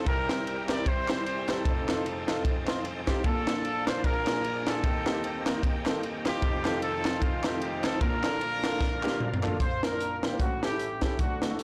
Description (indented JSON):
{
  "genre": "uptempo gospel",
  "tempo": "151 BPM",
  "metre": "4/4",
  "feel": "swing 58% on 8ths",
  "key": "Bb major",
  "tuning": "A4 = 442 Hz",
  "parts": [
    { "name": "clear horn section", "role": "melody", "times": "0.0-11.6 s", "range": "A3 to D5", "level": "-34 LUFS", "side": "equal", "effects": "none" },
    { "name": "warm baby grand piano", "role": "accompaniment", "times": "0.0-11.6 s", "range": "F1 to C5", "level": "-36 LUFS", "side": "equal", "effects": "none" },
    { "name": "bright tonewheel organ", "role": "sustained chords", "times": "0.0-9.6 s", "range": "D3 to Bb4", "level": "-39 LUFS", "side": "equal", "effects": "slow rotary speaker, overdrive, chorus vibrato" },
    { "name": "crisp fusion drum kit", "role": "drums", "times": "0.1-11.6 s", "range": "hi-hat, kick drum, ride cymbal, snare drum, toms", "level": "-32 LUFS", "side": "equal", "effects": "none" },
    { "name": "group handclap", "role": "percussion", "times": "0.3-9.5 s", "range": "none", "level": "-44 LUFS", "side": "equal", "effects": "none" }
  ],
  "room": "moderate large studio reverb, RT60 1.1 s",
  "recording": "blown-out, overdriven recording, overdrive",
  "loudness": "-29 LUFS",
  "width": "mono",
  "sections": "0.0-9.6 A section; 9.6-11.6 B section",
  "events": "drum fill 8.8-9.6",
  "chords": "0.1 C7; 1.7 F7; 3.2 Bbmaj7; 4.0 Bb7; 4.8 Eb6; 6.4 F7; 8.0 Bbmaj7; 9.6 Bb; 10.4 A7",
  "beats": "| 0.06 0.46 0.86 1.26 | 1.65 2.05 2.45 2.85 | 3.25 3.64 4.04 4.44 | 4.83 5.23 5.63 6.03 | 6.42 6.82 7.22 7.62 | 8.01 8.41 8.81 9.20 | 9.60 10.00 10.40 10.79 | 11.19 11.59"
}